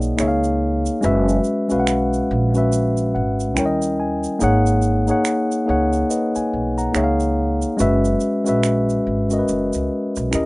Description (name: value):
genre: R&B, neo-soul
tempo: 71 BPM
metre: 4/4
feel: swing 60% on 16ths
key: unclear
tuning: A4 = 440 Hz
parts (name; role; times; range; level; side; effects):
- mellow tine electric piano; accompaniment; 0.0-10.5 s; G3 to A#5; -18 LUFS; left 1 dB; none
- upright bass; bass; 0.0-10.5 s; F#1 to D#2; -22 LUFS; right 1 dB; none
- tube shaker and finger snaps; percussion; 0.0-10.5 s; none; -29 LUFS; right 8 dB; none
room: little or no reverb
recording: rough home demo mix, nothing above 10.4 kHz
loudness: -17 LUFS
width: side -22 dB against mid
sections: 0.0-10.5 A section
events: tine electric piano fill 2.7-4.4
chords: 0.2 C#69; 1.0 F#9sus4; 3.6 D#7b9; 4.4 G#m9; 6.9 C#69; 7.8 F#9sus4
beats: 0.18 | 1.03 1.87 2.72 3.56 | 4.41 5.25 6.10 6.94 | 7.79 8.63 9.48 10.32